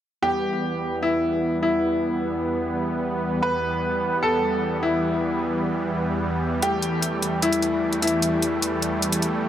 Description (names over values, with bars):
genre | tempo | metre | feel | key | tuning
heavy wobble dubstep | 150 BPM | 4/4 | half-time | E minor | A4 = 440 Hz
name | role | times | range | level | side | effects
bright grand piano | melody | 0.2-9.5 s | E4 to B4 | -24 LUFS | left 1 dB | digital delay
supersaw chords | sustained chords | 0.2-9.5 s | E2 to B3 | -24 LUFS | right 1 dB | low-pass filter
electronic hi-hat | drums | 6.6-9.3 s | none | -26 LUFS | left 1 dB | none
room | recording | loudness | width
moderate digital room reverb, RT60 1.1 s | none | -21 LUFS | side -10 dB against mid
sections
0.2-9.5 A section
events
filter sweep on supersaw synth 0.2-9.5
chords
0.2 Em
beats
| 0.23 0.62 1.02 1.43 | 1.82 2.23 2.62 3.02 | 3.42 3.83 4.22 4.62 | 5.03 5.42 5.83 6.22 | 6.62 7.03 7.42 7.83 | 8.22 8.62 9.03 9.43